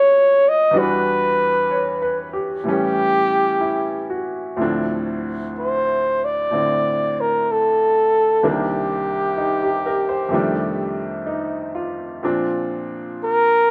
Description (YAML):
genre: jazz ballad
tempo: 63 BPM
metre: 4/4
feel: swing 69% on 8ths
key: unclear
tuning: A4 = 440 Hz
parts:
  - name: warm flugelhorn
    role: melody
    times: 0.0-13.7 s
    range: G4 to D#5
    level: -20 LUFS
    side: equal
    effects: none
  - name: bright upright piano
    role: accompaniment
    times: 0.0-13.7 s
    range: C2 to Db5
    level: -26 LUFS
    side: equal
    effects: none
room: moderate stone room reverb, RT60 1.0 s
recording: band playing live in one room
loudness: -20 LUFS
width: mono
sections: 0.0-13.7 A section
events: none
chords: 0.0 Bmaj7; 0.7 Em7; 2.6 A7; 4.6 Dm7; 8.4 Cm7; 10.3 F13; 12.2 Bbadd9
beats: | 0.73 1.69 2.65 3.62 | 4.59 5.55 6.51 7.47 | 8.42 9.37 10.32 11.27 | 12.23 13.18